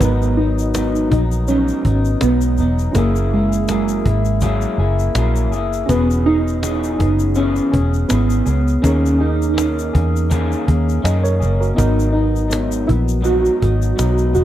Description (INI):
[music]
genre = indie pop, bedroom pop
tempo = 82 BPM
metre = 4/4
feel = swing 55% on 16ths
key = G# minor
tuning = A4 = 440 Hz
[part]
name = warbly lo-fi synth keys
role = melody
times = 0.0-14.4 s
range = G#3 to F#4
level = -19 LUFS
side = right 2 dB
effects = ensemble chorus, tape echo
[part]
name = electric guitar through a small old amp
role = accompaniment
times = 0.0-14.4 s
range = G#2 to G#4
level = -23 LUFS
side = left 3 dB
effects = wide subtle chorus, warbly pitch drift
[part]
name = tine electric piano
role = accompaniment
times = 0.0-14.4 s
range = B3 to D#5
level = -28 LUFS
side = right 4 dB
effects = overdrive, fast stereo tremolo
[part]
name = vintage muted fingered electric bass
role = bass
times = 0.0-14.4 s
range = E1 to F#2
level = -18 LUFS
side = equal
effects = none
[part]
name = cajon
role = drums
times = 0.0-14.4 s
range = none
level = -21 LUFS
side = equal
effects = none
[part]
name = egg shaker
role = percussion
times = 0.0-14.4 s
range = none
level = -35 LUFS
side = left 13 dB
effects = none
[sound]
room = little or no reverb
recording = dry, close 1970s-style studio recording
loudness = -14 LUFS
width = side -12 dB against mid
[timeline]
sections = 0.0-14.4 A section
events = none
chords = 0.0 G#m7; 3.0 F#9; 5.9 E6; 8.8 D#7sus4; 11.8 G#m7